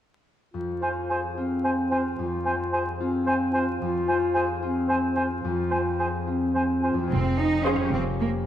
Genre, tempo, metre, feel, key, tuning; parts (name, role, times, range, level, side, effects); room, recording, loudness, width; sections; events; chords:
cinematic, playful, whimsical film cue; 73 BPM (dotted quarters); 6/8; straight; F minor; A4 = 441 Hz
mellow clarinet; second line; 0.5-7.0 s; C4 to F4; -27 LUFS; equal
concert harp; arpeggios; 0.5-8.5 s; F2 to Bb4; -30 LUFS; left 3 dB
hollow concert flute; second line; 0.8-6.9 s; Ab5; -30 LUFS; equal
mellow oboe; second line; 0.8-6.9 s; C5; -31 LUFS; right 1 dB
rich studio cello section; bass; 7.1-8.3 s; Bb3 to Eb4; -25 LUFS; right 3 dB
warm studio double bass section; bass; 7.1-8.5 s; F1; -28 LUFS; right 2 dB
rich studio violin section; melody; 7.7-7.9 s; F5; -37 LUFS; left 3 dB
rich studio violin section; second line; 7.7-7.9 s; C5; -33 LUFS; left 1 dB
clear studio viola section; accompaniment; 7.7-7.9 s; Ab4; -33 LUFS; right 4 dB
wet scoring stage reverb, RT60 2.0 s; vinyl crackle; -23 LUFS; side -11 dB against mid
0.5-7.1 A section; 7.1-8.5 B section
0.5 Fm; 7.9 Gm7b5/F